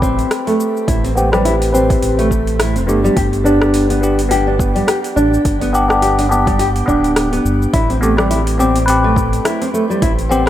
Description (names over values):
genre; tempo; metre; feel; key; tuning
organic downtempo; 105 BPM; 4/4; swing 57% on 16ths; A minor; A4 = 440 Hz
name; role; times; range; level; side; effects
bell-like tine electric piano; accompaniment; 0.0-10.5 s; B3 to B4; -17 LUFS; left 2 dB; phaser, sidechain pumping, low-pass filter, digital delay, shimmer reverb
nylon-string guitar; arpeggios; 0.0-10.5 s; G3 to G4; -17 LUFS; equal; digital delay, shimmer reverb
round analog bass; bass; 0.0-10.5 s; D1 to A1; -18 LUFS; equal; sidechain pumping
deep house drum kit; drums; 0.0-10.5 s; cabasa, hi-hat, rim click; -22 LUFS; equal; overdrive
electronic kick drum; drums; 0.0-10.2 s; none; -19 LUFS; equal; overdrive
room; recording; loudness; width
light reverb; none; -12 LUFS; side -12 dB against mid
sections
0.0-10.5 A section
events
filter sweep on tine electric piano 0.0-10.5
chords
0.0 Am7; 3.2 G; 7.7 Am7